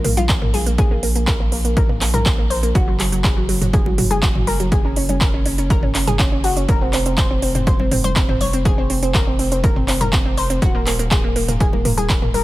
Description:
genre	progressive house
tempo	122 BPM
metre	4/4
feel	straight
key	unclear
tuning	A4 = 438 Hz
part	analog pluck	arpeggios	0.0-12.4 s	Gb3 to Db5	-22 LUFS	equal	chorus, cassette tape, sidechain pumping, dub echo
part	saturated sub bass	bass	0.0-12.4 s	Eb1 to Bb1	-22 LUFS	equal	sidechain pumping
part	big-room dance drum kit	drums	0.0-12.4 s	handclaps, hi-hat	-24 LUFS	right 1 dB	overdrive, sidechain pumping on hats, sidechain pumping on cymbals
part	electronic toms and congas	percussion	0.0-12.4 s	none	-24 LUFS	left 2 dB	sidechain pumping on perc, sidechain pumping on toms
part	electronic kick drum	drums	0.3-12.2 s	none	-18 LUFS	equal	overdrive
room	digital ambience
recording	none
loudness	-15 LUFS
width	side -17 dB against mid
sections	0.0-12.4 A section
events	none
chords	0.0 N.C.; 2.8 Gb5; 6.7 F5; 10.6 Eb5

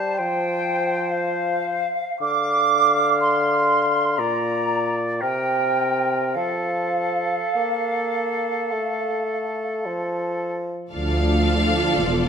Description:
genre	classical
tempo	50-64 BPM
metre	4/4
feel	rubato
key	F major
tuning	A4 = 439 Hz
part	clear oboe	second line	0.0-10.6 s	A4 to F5	-27 LUFS	equal	none
part	flute section	second line	0.0-9.8 s	F5 to D6	-22 LUFS	right 2 dB	none
part	mellow bassoon	accompaniment	0.0-10.9 s	Bb2 to Bb3	-25 LUFS	equal	none
part	clear studio violin section	melody	10.9-12.3 s	F5	-24 LUFS	left 2 dB	none
part	clear symphonic violin section	second line	10.9-12.3 s	A4 to D5	-28 LUFS	left 4 dB	none
part	rich symphonic viola section	accompaniment	10.9-12.3 s	F3 to F4	-24 LUFS	right 2 dB	none
part	clear symphonic cello section	bass	10.9-12.3 s	D2 to E2	-24 LUFS	right 2 dB	none
part	rich symphonic double bass section	bass	10.9-12.3 s	E1 to D2	-23 LUFS	right 1 dB	none
room	moderate scoring stage reverb, RT60 1.8 s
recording	none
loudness	-20 LUFS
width	side -6 dB against mid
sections	0.0-10.9 A section; 10.9-12.3 B section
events	none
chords	0.2 F5; 2.2 Dm; 4.2 Bb; 5.2 C5; 6.4 F; 10.9 Dm

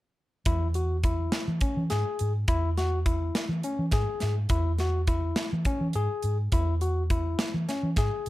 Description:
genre	progressive instrumental, band music in an uneven meter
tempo	208 BPM (eighths)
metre	7/8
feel	straight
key	E major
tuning	A4 = 442 Hz
part	barky tine electric piano	arpeggios	0.5-8.3 s	C#4 to G#4	-31 LUFS	left 2 dB	overdrive
part	hollow-body short-scale fingered electric bass	bass	0.5-8.3 s	E2 to E3	-27 LUFS	equal	none
part	tight metal drum kit	drums	0.5-8.3 s	hi-hat, kick drum, snare drum	-29 LUFS	equal	none
room	light reverb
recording	dark, warm production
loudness	-25 LUFS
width	side -17 dB against mid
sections	0.5-8.3 A section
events	none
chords	0.5 E

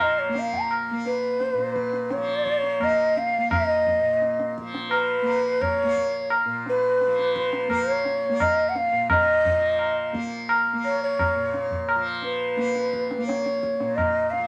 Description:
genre	indian classical, Hindustani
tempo	86 BPM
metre	4/4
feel	straight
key	Bb raga bhairavi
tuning	A4 = 440 Hz
part	breathy hollow bansuri	melody	0.0-14.5 s	Cb5 to Bb5	-25 LUFS	equal	none
part	tanpura	drone	0.0-14.5 s	Bb2 to Bb3	-33 LUFS	equal	none
part	tabla	percussion	0.4-14.5 s	none	-28 LUFS	equal	none
room	moderate studio reverb, RT60 0.9 s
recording	none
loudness	-24 LUFS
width	mono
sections	0.0-14.5 A section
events	none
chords	none

